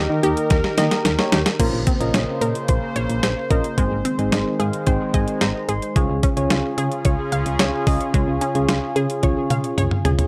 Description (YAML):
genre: synth-pop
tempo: 110 BPM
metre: 4/4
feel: straight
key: unclear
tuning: A4 = 435 Hz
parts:
  - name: sweeping resonant pad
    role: sustained chords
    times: 0.0-10.3 s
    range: Db3 to C5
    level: -27 LUFS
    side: equal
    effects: chorus
  - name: unison pluck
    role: arpeggios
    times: 0.0-10.3 s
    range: Ab3 to F5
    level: -30 LUFS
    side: equal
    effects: analog delay
  - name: solid FM bass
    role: bass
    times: 0.0-10.2 s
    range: Ab1 to Eb3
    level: -26 LUFS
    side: equal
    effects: none
  - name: soft electric-piano-like synth keys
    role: accompaniment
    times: 0.2-9.8 s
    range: Bb3 to C6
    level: -28 LUFS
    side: equal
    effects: chorus
  - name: clean 12-bit digital drum machine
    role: drums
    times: 0.2-10.3 s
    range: crash cymbal, hi-hat, kick drum, snare drum, toms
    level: -23 LUFS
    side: equal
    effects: overdrive
room: little or no reverb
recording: dry, gritty hardware recording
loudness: -20 LUFS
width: mono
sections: 0.0-1.6 A section; 1.6-10.3 B section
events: drum fill 0.5-1.6, 9.2-10.3; synth keys fill 4.3-6.0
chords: 0.0 Eb; 1.6 Bbmadd9; 3.8 Ab; 6.0 Db